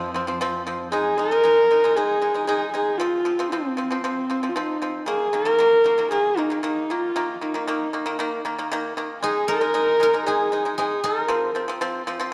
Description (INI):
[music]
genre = mongolian traditional, Mongolian folk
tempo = 116 BPM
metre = 4/4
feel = straight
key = unclear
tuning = A4 = 439 Hz
[part]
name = pipa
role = arpeggios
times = 0.0-12.3 s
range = Eb3 to Eb4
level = -29 LUFS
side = equal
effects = none
[part]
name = muted cello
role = drone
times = 0.0-1.0 s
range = F2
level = -40 LUFS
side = equal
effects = none
[part]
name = dark horsehead fiddle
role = melody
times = 0.9-11.6 s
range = C4 to Bb4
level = -23 LUFS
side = equal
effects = none
[part]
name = guzheng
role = second line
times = 9.2-12.3 s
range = Ab4 to Bb4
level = -29 LUFS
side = equal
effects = none
[sound]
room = wet echo chamber reverb, RT60 1.8 s, studio reverb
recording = none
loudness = -22 LUFS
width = mono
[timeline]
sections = 0.9-12.3 A section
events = none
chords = 0.0 F5; 0.9 Ab5; 3.0 F5; 5.1 Eb5; 9.2 Ab5; 11.3 F5